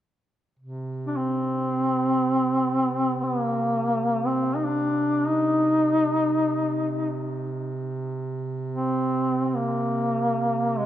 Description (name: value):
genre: caucasian folk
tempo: free time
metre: none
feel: none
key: C minor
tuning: A4 = 439 Hz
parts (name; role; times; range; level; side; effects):
- mellow duduk; drone; 0.6-10.9 s; C3; -30 LUFS; right 4 dB; none
- mellow duduk; melody; 1.1-10.9 s; Ab3 to Eb4; -22 LUFS; left 1 dB; none
room: wet church reverb, RT60 3.2 s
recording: none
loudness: -22 LUFS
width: side -12 dB against mid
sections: 0.6-10.9 A section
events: none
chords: none